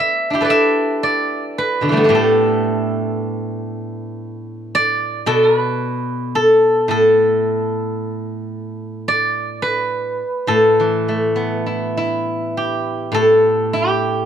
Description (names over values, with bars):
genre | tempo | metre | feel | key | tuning
chinese traditional, Chinese solo plucked strings | 50-58 BPM | 4/4 | rubato | A shang mode | A4 = 440 Hz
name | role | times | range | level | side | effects
steel-string zither | solo | 0.0-14.3 s | A2 to E5 | -15 LUFS | equal | none
room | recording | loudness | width
small room ambience | dry, close 1970s-style studio recording | -15 LUFS | side -9 dB against mid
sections
0.0-13.1 A section; 13.1-14.3 B section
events
none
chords
none